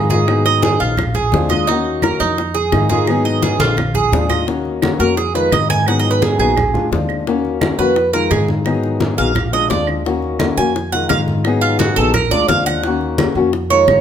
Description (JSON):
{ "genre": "latin, Cuban son and guajira", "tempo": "172 BPM", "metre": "4/4", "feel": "straight", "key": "Eb minor", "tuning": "A4 = 440 Hz", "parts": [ { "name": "fingerpicked old ladder-braced acoustic guitar", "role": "accompaniment", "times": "0.0-14.0 s", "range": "Eb3 to Ab4", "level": "-19 LUFS", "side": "left 5 dB", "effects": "none" }, { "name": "Cuban tres", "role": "arpeggios", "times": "0.0-14.0 s", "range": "Eb4 to Ab5", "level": "-17 LUFS", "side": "right 5 dB", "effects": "none" }, { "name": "upright bass", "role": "bass", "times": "0.0-14.0 s", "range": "Bb1 to Ab2", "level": "-21 LUFS", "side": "equal", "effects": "none" }, { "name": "bongos", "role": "percussion", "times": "0.1-14.0 s", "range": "none", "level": "-24 LUFS", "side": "left 5 dB", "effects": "none" }, { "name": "congas", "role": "percussion", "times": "0.1-14.0 s", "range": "none", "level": "-22 LUFS", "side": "equal", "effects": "none" }, { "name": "claves", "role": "percussion", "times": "0.3-14.0 s", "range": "none", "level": "-29 LUFS", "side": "right 8 dB", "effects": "none" } ], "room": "moderate large studio reverb, RT60 1.2 s", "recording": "none", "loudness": "-13 LUFS", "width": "side -9 dB against mid", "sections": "0.0-4.5 A section; 4.5-14.0 B section", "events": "drum fill 3.4-4.5; Cuban tres solo 4.5-14.0", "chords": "0.3 Abm9; 1.0 Bb7; 1.7 Ebm9; 2.4 Fm7; 3.1 Abm9; 3.8 Bb7; 4.5 Ebm9; 5.2 Fm7b5; 5.9 Abm9; 6.6 Bb7; 7.3 Ebm9; 8.0 Fm7b5; 8.7 Abm9; 9.4 Bb7; 10.1 Ebm9; 10.7 Fm7; 11.4 Abm9; 12.1 Bb7; 12.8 Ebm9" }